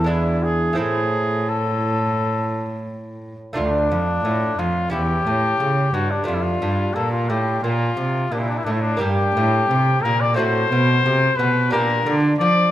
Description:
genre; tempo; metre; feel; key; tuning
classical, baroque-style sonata movement with continuo; 88 BPM; 4/4; straight; A minor, D minor from 3.6 s; A4 = 442 Hz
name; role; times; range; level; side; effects
clear trumpet; melody; 0.0-12.7 s; D4 to D5; -21 LUFS; left 3 dB; none
lute; accompaniment; 0.0-12.7 s; D2 to G4; -25 LUFS; right 1 dB; none
rich cello; bass; 0.0-12.7 s; D2 to F3; -22 LUFS; right 1 dB; none
room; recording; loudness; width
moderate recital hall reverb, RT60 1.6 s; none; -18 LUFS; side -13 dB against mid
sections
0.0-3.6 A section; 3.6-12.7 A section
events
none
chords
0.1 E7; 0.8 Am; 3.6 Dm; 4.9 C#dim/E; 6.3 Dm/F; 9.0 Gm; 10.4 F#dim/A; 11.7 Gm/Bb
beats
0.09 | 0.78 1.48 2.18 2.87 | 3.56 4.25 4.93 5.61 | 6.29 6.96 7.64 8.33 | 9.02 9.70 10.38 11.05 | 11.72 12.40

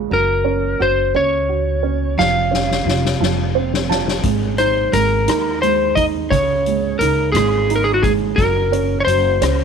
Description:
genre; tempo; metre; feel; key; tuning
six-eight pop ballad; 58 BPM (dotted quarters); 6/8; straight; unclear; A4 = 440 Hz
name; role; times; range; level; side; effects
warm upright piano; accompaniment; 0.0-9.6 s; Db3 to A5; -21 LUFS; right 15 dB; none
upright bass; bass; 0.0-9.6 s; F1 to Eb2; -22 LUFS; left 1 dB; none
electric slide guitar; melody; 0.1-9.6 s; Gb4 to F5; -18 LUFS; left 2 dB; none
soft-mallet drum kit; drums; 2.2-9.6 s; hi-hat, kick drum, rim click, snare drum; -23 LUFS; left 6 dB; none
room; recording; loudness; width
small room ambience; 1960s-style stereo with parts hard left and right; -15 LUFS; side -6 dB against mid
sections
0.0-9.6 A section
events
drum fill 2.2-4.2; upright piano fill 3.2-4.2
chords
0.1 Gb; 2.2 Db/F; 3.2 F5; 4.2 Absus2; 6.3 Dbsus2; 8.4 Gb5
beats
| 0.11 1.15 | 2.18 3.21 | 4.25 5.28 | 6.31 7.35 | 8.38 9.41

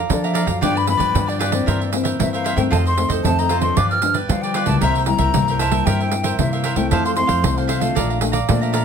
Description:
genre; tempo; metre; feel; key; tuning
samba and choro; 114 BPM; 4/4; straight; F major; A4 = 439 Hz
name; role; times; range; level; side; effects
cavaquinho; accompaniment; 0.0-8.8 s; E4 to Bb5; -25 LUFS; right 4 dB; none
nylon-string guitar; accompaniment; 0.0-8.8 s; F2 to A4; -23 LUFS; left 5 dB; none
breathy hollow jazz flute; melody; 0.1-8.8 s; D5 to F6; -22 LUFS; left 2 dB; none
upright bass; bass; 0.1-8.8 s; Bb1 to G3; -21 LUFS; equal; none
pandeiro; percussion; 0.1-8.8 s; none; -24 LUFS; right 9 dB; none
room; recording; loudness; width
light reverb; close, detailed microphones; -16 LUFS; side -7 dB against mid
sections
0.0-8.8 A section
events
none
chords
0.0 Bbmaj7/F; 0.6 G7; 1.7 C7/G; 2.7 F7; 3.8 G7; 4.8 C7; 6.9 Fmaj7; 8.0 Bbmaj7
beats
0.10 | 0.63 1.15 1.68 2.20 | 2.72 3.25 3.77 4.30 | 4.82 5.34 5.87 6.39 | 6.92 7.44 7.96 8.49

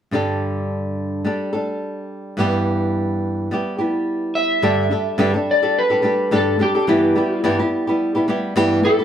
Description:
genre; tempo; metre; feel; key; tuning
pop; 107 BPM; 4/4; swing 55% on 16ths; G major; A4 = 438 Hz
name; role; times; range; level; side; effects
flamenco guitar; accompaniment; 0.1-9.0 s; G2 to A4; -18 LUFS; equal; none
electric slide guitar; melody; 4.4-9.0 s; G4 to E5; -18 LUFS; left 1 dB; none
room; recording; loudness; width
wet small room reverb, RT60 0.5 s; band playing live in one room; -17 LUFS; side -9 dB against mid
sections
0.1-4.6 A section; 4.6-9.0 B section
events
none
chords
0.1 Gsus2; 2.4 Em/G; 4.6 Gsus2; 6.9 Em/G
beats
| 0.12 0.69 1.25 1.82 | 2.38 2.95 3.51 4.07 | 4.63 5.20 5.76 6.32 | 6.88 7.44 8.00 8.56

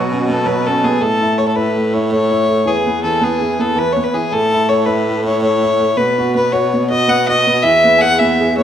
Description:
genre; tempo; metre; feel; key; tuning
celtic folk, Celtic slip jig; 108 BPM (dotted quarters); 9/8; straight; unclear; A4 = 440 Hz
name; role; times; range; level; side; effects
warm fiddle; melody; 0.0-8.6 s; F#4 to G#5; -15 LUFS; left 2 dB; none
bright upright piano; accompaniment; 0.0-8.6 s; B2 to G#4; -18 LUFS; right 3 dB; none
clear baritone saxophone; bass; 0.0-8.6 s; E2 to B2; -20 LUFS; equal; none
room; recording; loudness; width
moderate recital hall reverb, RT60 1.4 s; minimal, uncompressed stereo recording; -12 LUFS; side -9 dB against mid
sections
0.0-8.6 A section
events
none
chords
0.0 Bsus2; 1.0 Aadd9; 2.7 E; 4.3 A; 6.0 Badd9; 7.6 E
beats
0.45 | 1.01 1.56 2.11 | 2.66 3.22 3.77 | 4.32 4.88 5.43 | 5.98 6.54 7.09 | 7.64 8.20

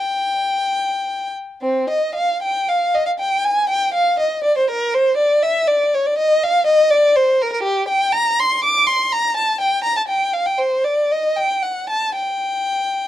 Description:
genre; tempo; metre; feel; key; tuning
classical, baroque-style suite movement for unaccompanied violin; 66-83 BPM (dotted quarters); 6/8; rubato; G minor from 7.6 s; A4 = 441 Hz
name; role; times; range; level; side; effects
warm violin; solo; 0.0-13.1 s; C4 to D6; -16 LUFS; equal; none
room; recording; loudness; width
light reverb; dark, warm production; -16 LUFS; side -12 dB against mid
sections
0.0-1.6 A section; 1.6-13.1 A section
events
none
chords
none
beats
0.77 | 1.64 2.42 | 3.18 3.94 | 4.69 5.43 | 6.18 6.92 | 7.64 8.38 | 9.12 9.85 | 10.59 11.37 | 12.16 12.97

